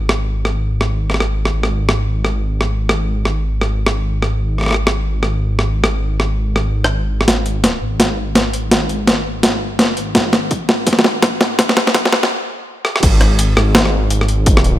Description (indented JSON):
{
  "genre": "half-time drum and bass",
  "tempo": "167 BPM",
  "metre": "4/4",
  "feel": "swing 60% on 16ths, half-time",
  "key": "unclear",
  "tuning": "A4 = 440 Hz",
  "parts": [
    { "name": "dark detuned saw bass", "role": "bass", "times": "0.0-14.8 s", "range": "G#1", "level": "-18 LUFS", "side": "equal", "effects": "none" },
    { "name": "boom bap sampler-style drum kit", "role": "drums", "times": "0.1-14.7 s", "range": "crash cymbal, hi-hat, rim click, snare drum", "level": "-15 LUFS", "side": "equal", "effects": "overdrive" },
    { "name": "electronic kick drum", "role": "drums", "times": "10.2-14.6 s", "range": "none", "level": "-16 LUFS", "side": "equal", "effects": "none" }
  ],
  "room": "light reverb",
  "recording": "high-pass filter",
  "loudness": "-14 LUFS",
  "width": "side -13 dB against mid",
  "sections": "0.0-7.3 A section; 7.3-13.0 B section; 13.0-14.8 C section",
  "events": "build-up 7.3-13.0; drum fill 7.3-12.3, 12.8; filter sweep 7.3-13.0; stop 12.3-13.0; drop 13.0-14.8",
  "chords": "none"
}